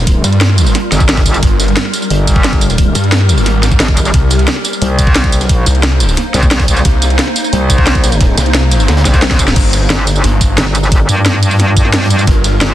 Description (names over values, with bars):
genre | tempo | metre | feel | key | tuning
dark technical drum and bass | 177 BPM | 4/4 | straight | G minor | A4 = 440 Hz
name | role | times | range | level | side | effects
swarming drone | sustained chords | 0.0-12.7 s | G3 to C5 | -19 LUFS | equal | built-in reverb, sidechain pumping
metallic wobble bass | bass | 0.0-12.7 s | G1 to G2 | -12 LUFS | equal | chorus
crunchy breakbeat drum kit | drums | 0.1-12.7 s | hi-hat, snare drum | -26 LUFS | equal | none
drum and bass drum kit | drums | 0.1-12.7 s | crash cymbal, hi-hat, snare drum, tambourine, toms | -15 LUFS | equal | none
electronic kick drum | drums | 0.1-12.3 s | none | -11 LUFS | equal | none
snarling distorted saw bass | bass | 0.2-12.6 s | G1 to G2 | -11 LUFS | equal | distortion, overdrive
room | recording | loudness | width
digital ambience | dense, heavily limited modern master | -8 LUFS | side -13 dB against mid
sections
0.0-9.6 A section; 9.6-12.7 A section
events
drop 0.0-9.6, 9.6-12.7; drum fill 9.2-9.6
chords
0.0 Gm7; 4.1 Cm7; 9.6 Gm7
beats
| 0.07 0.41 0.75 1.09 | 1.43 1.77 2.10 2.44 | 2.78 3.12 3.46 3.80 | 4.14 4.48 4.82 5.16 | 5.49 5.83 6.17 6.51 | 6.85 7.19 7.53 7.87 | 8.21 8.54 8.88 9.22 | 9.56 9.90 10.24 10.58 | 10.92 11.26 11.60 11.94 | 12.27 12.61